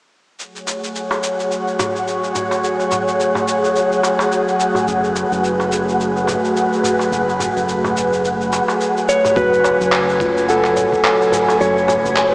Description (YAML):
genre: organic downtempo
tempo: 107 BPM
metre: 4/4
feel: swing 58% on 16ths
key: F# minor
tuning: A4 = 440 Hz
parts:
  - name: airy breathy pad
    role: sustained chords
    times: 0.4-12.3 s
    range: C#3 to G#5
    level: -19 LUFS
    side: equal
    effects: chorus, phaser, sidechain pumping
  - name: electronic shaker and handclaps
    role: drums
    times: 0.4-12.3 s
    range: none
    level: -24 LUFS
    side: equal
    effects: none
  - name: wind-like tuned noise texture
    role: texture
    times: 1.0-12.3 s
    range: F#4 to B5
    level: -22 LUFS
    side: equal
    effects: built-in reverb, ensemble chorus
  - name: darbuka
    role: percussion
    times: 0.7-12.3 s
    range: none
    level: -27 LUFS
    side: equal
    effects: none
  - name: round analog bass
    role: bass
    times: 4.9-12.3 s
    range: F#1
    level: -27 LUFS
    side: equal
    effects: sidechain pumping
  - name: clean lap steel guitar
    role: melody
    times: 9.1-12.3 s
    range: A4 to C#5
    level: -15 LUFS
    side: equal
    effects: vintage 12-bit sampler grit, diffuse ambient delay
  - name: kalimba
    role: arpeggios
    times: 9.4-12.3 s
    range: E#4 to F#5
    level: -19 LUFS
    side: equal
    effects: diffuse ambient delay
  - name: electronic kick drum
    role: drums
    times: 9.4-11.0 s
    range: none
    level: -26 LUFS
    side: equal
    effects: none
room: wet huge ambient reverb, RT60 7.9 s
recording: dreamy mix soaked in reverb, small speaker sound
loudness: -14 LUFS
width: side -24 dB against mid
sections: 0.4-9.4 A section; 9.4-12.3 B section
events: none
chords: 0.4 F#madd9